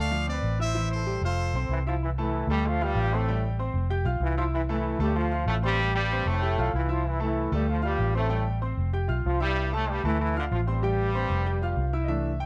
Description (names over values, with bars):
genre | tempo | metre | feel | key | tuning
latin | 190 BPM | 4/4 | straight | unclear | A4 = 440 Hz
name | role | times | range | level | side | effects
clear trumpet section | melody | 0.0-1.8 s | A4 to F5 | -34 LUFS | equal | none
bright concert grand piano | accompaniment | 0.0-12.5 s | E3 to G6 | -34 LUFS | equal | none
vintage muted fingered electric bass | bass | 0.0-12.5 s | F1 to D2 | -29 LUFS | equal | none
brilliant trombone section | melody | 1.7-11.9 s | G2 to F4 | -31 LUFS | equal | none
room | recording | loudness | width
light reverb | none | -27 LUFS | mono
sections
0.0-2.0 A section; 2.0-12.1 B section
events
none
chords
0.1 Dm7; 0.7 Am7; 1.4 F; 2.0 C6; 2.6 Dm7; 3.3 Am7; 3.9 Fsus2; 4.5 C6; 5.2 Dm7; 5.8 Am7; 6.4 Fadd9; 7.1 C6; 7.7 Dm7; 8.3 Am7; 8.9 Fsus2; 9.6 C6; 10.2 Dm7; 10.8 Am7; 11.5 Fsus2